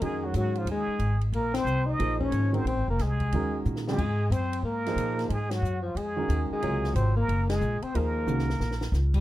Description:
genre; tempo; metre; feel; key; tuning
modal jazz; 182 BPM; 4/4; swing 64% on 8ths; unclear; A4 = 438 Hz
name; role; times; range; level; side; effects
trumpet with plunger mute; melody; 0.0-9.2 s; F4 to Eb5; -34 LUFS; right 2 dB; plate reverb
warm alto saxophone; second line; 0.0-9.2 s; F3 to Eb4; -31 LUFS; left 3 dB; plate reverb
warm concert grand piano; accompaniment; 0.0-8.5 s; C3 to Db5; -33 LUFS; right 3 dB; plate reverb
upright bass; bass; 0.0-9.2 s; F1 to Bb2; -28 LUFS; equal; none
compact cocktail drum kit; drums; 0.0-9.2 s; crash cymbal, hi-hat, kick drum, ride cymbal, snare drum; -38 LUFS; equal; none
room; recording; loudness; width
light reverb; rough home demo mix; -25 LUFS; side -15 dB against mid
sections
0.0-9.2 A section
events
band accent 1.5, 5.5, 7.4; drum fill 3.7-4.0, 8.3-8.9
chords
0.0 Bb9sus4; 4.0 Ab9sus4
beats
| 0.02 0.35 0.68 1.01 | 1.34 1.67 2.00 2.33 | 2.66 2.99 3.32 3.65 | 3.98 4.31 4.64 4.97 | 5.30 5.63 5.96 6.29 | 6.62 6.95 7.28 7.61 | 7.94 8.27 8.60 8.93

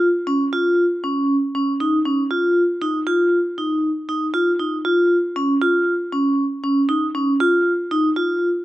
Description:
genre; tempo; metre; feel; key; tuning
progressive instrumental, progressive; 118 BPM; 5/4; straight; unclear; A4 = 440 Hz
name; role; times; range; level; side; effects
vibraphone with medium hard mallets; solo; 0.0-8.5 s; Db4 to F4; -17 LUFS; equal; slapback echo
room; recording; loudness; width
light reverb; recorded outdoors, with no room sound; -17 LUFS; side -16 dB against mid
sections
0.0-8.6 A section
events
none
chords
none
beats
0.27 0.78 1.29 1.80 | 2.31 2.82 3.33 3.84 4.34 | 4.86 5.37 5.87 6.38 6.89 | 7.40 7.91 8.42

